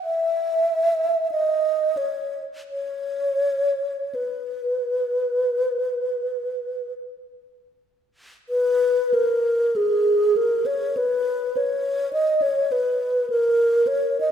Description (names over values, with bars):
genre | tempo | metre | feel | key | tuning
classical, free, expressive piece for unaccompanied alto flute | 32-53 BPM | 4/4 | rubato | B major | A4 = 440 Hz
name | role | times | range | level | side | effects
mellow hollow wooden-headed alto flute | solo | 0.0-14.3 s | G#4 to E5 | -20 LUFS | equal | none
room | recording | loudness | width
wet recital hall reverb, RT60 1.9 s | none | -20 LUFS | side -8 dB against mid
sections
0.0-8.5 A section; 8.5-14.3 B section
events
none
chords
none